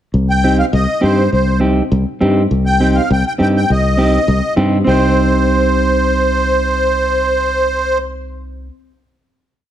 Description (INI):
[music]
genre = latin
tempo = 204 BPM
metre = 4/4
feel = straight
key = C minor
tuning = A4 = 440 Hz
[part]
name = fingered electric bass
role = bass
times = 0.1-8.7 s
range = C2 to G2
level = -16 LUFS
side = left 1 dB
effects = none
[part]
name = musette accordion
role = melody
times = 0.3-8.0 s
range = C5 to G5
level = -16 LUFS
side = equal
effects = none
[part]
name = mellow electric guitar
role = accompaniment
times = 0.4-8.7 s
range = C4 to G4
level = -18 LUFS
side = right 2 dB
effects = none
[sound]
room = moderate large studio reverb, RT60 1.2 s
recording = none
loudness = -12 LUFS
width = side -11 dB against mid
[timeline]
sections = 0.1-4.9 A section; 4.9-7.2 final chord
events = none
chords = 0.1 Cm